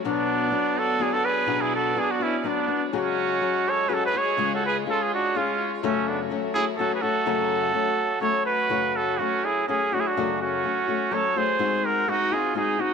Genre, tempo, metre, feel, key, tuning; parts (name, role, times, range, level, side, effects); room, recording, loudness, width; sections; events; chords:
mexican folk, mariachi; 125 BPM; 3/4; straight; F# minor; A4 = 438 Hz
nylon-string guitar; accompaniment; 0.0-12.9 s; F#2 to G#4; -27 LUFS; left 10 dB
warm studio violin section; sustained chords; 0.0-8.7 s; G#3 to D5; -34 LUFS; right 3 dB
clear trumpet; melody; 0.1-12.9 s; C#4 to C#5; -24 LUFS; right 2 dB; tape echo
bright trumpet; second line; 0.1-12.9 s; A3 to A4; -30 LUFS; right 12 dB
moderate echo chamber reverb, RT60 1.9 s, small room ambience; 1960s-style stereo with parts hard left and right; -22 LUFS; side -6 dB against mid
0.0-8.7 A section; 8.7-12.9 B section
0.1 Bm; 2.9 C#sus4; 4.4 C#; 5.8 F#m; 11.6 G#7